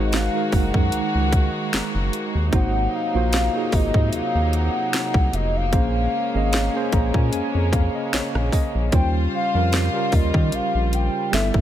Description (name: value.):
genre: contemporary R&B.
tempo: 75 BPM.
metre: 4/4.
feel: swing 54% on 16ths.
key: unclear.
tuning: A4 = 442 Hz.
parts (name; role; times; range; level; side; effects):
hollow clarinet-like synth lead; melody; 0.0-11.5 s; Eb5 to G5; -26 LUFS; left 1 dB; chorus, ping-pong delay.
tine electric piano; accompaniment; 0.0-11.6 s; G3 to Bb5; -25 LUFS; right 2 dB; medium stereo tremolo.
rich studio string section; sustained chords; 0.0-11.6 s; C3 to C5; -29 LUFS; equal; none.
round analog bass; bass; 0.0-11.6 s; F1 to Eb3; -22 LUFS; equal; none.
trap drum kit; drums; 0.1-11.6 s; hi-hat, kick drum, rim click, snare drum; -22 LUFS; equal; overdrive.
room: little or no reverb.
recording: none.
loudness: -18 LUFS.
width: side -11 dB against mid.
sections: 0.0-11.6 A section.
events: tine electric piano fill 6.5-8.9.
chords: 0.0 Gb69; 2.5 Ab13; 5.7 Bbm9; 8.9 Eb13.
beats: 0.13 0.93 1.73 | 2.53 3.33 4.13 4.93 | 5.73 6.53 7.33 8.13 | 8.93 9.73 10.53 11.33.